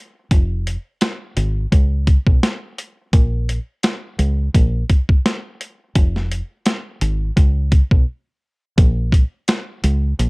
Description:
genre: hip hop, boom-bap hip-hop.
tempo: 85 BPM.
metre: 4/4.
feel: swing 57% on 16ths.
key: Bb minor.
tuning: A4 = 440 Hz.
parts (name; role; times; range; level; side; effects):
deep dub fingered electric bass; bass; 0.3-10.3 s; F1 to C#2; -18 LUFS; equal; none.
boom bap sampler-style drum kit; drums; 0.3-10.3 s; hi-hat, kick drum, snare drum; -14 LUFS; equal; none.
room: little or no reverb.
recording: home recording on cassette.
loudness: -16 LUFS.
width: side -32 dB against mid.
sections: 0.0-8.8 A section; 8.8-10.3 B section.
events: break 8.1-8.8.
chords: none.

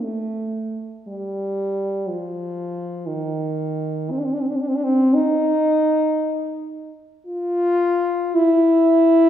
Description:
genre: classical, free, expressive piece for unaccompanied French horn.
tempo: 53-62 BPM.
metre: 3/4.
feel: rubato.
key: unclear.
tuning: A4 = 441 Hz.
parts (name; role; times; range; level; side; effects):
dark French horn; solo; 0.0-9.3 s; D#3 to E#4; -18 LUFS; equal; none.
room: wet recital hall reverb, RT60 1.5 s.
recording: recorded in a church or concert hall.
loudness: -18 LUFS.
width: side -10 dB against mid.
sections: 0.0-9.3 A section.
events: none.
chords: none.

